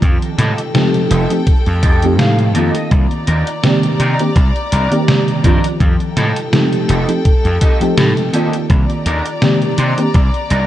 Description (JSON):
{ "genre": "vaporwave", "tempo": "83 BPM", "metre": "4/4", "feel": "swing 55% on 16ths", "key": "unclear", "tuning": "A4 = 440 Hz", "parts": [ { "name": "mellow FM electric piano", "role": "accompaniment", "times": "0.0-10.1 s", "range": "Eb3 to D5", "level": "-17 LUFS", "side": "equal", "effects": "ensemble chorus, analog delay" }, { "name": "dark chamber string section", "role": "sustained chords", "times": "0.0-10.7 s", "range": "A4 to Bb5", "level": "-24 LUFS", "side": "left 2 dB", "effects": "none" }, { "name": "gritty slap bass", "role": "bass", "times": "0.0-10.7 s", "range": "F1 to C3", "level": "-16 LUFS", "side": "equal", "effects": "overdrive" }, { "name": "detuned 8-bit digital drum machine", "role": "drums", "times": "0.0-10.7 s", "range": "hi-hat, snare drum", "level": "-17 LUFS", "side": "equal", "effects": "gated reverb" }, { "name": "electronic kick drum", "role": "drums", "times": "0.0-10.3 s", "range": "none", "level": "-13 LUFS", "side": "equal", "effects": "none" }, { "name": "electric guitar at the edge of break-up", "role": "riff", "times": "0.4-10.7 s", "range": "D4 to G5", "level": "-24 LUFS", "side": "right 1 dB", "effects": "ensemble chorus, vintage 12-bit sampler grit, low-pass filter, analog delay" } ], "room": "light reverb, digital ambience", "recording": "cassette tape", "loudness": "-12 LUFS", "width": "side -12 dB against mid", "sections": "0.0-10.7 A section", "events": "clean electric guitar fill 1.5-2.9", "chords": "0.0 F9; 2.9 Cm9; 5.8 F9; 8.7 Cm9" }